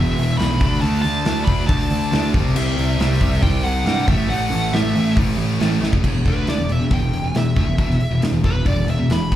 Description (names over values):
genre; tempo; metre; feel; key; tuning
hard rock; 138 BPM; 4/4; straight; unclear; A4 = 439 Hz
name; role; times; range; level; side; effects
high-gain lead guitar; melody; 0.0-9.3 s; B4 to B5; -26 LUFS; equal; distortion, slapback echo, tape echo
distorted electric guitar; riff; 0.0-5.8 s; E2 to D4; -28 LUFS; left 1 dB; overdrive
scooped high-gain guitar; riff; 0.0-9.4 s; E2 to D4; -28 LUFS; left 9 dB; distortion, slapback echo
sludgy distorted guitar; riff; 0.0-9.4 s; E2 to D4; -24 LUFS; right 6 dB; overdrive
fuzz picked electric bass; bass; 0.0-9.4 s; E1 to G2; -21 LUFS; left 1 dB; overdrive
big rock drum kit; drums; 0.2-9.4 s; crash cymbal, hi-hat, kick drum, snare drum; -21 LUFS; equal; none
room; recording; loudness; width
little or no reverb; live gig heard through the venue's PA, club reverb; -16 LUFS; side -12 dB against mid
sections
0.0-6.0 A section; 6.0-9.4 B section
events
drum fill 5.8; lead electric guitar solo 6.0-9.4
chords
0.0 E5; 0.6 D5; 2.3 C; 4.1 A5; 6.0 E5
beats
0.39 | 0.83 1.26 1.69 2.13 | 2.56 3.00 3.43 3.86 | 4.30 4.73 5.17 5.61 | 6.04 6.48 6.91 7.35 | 7.79 8.23 8.66 9.10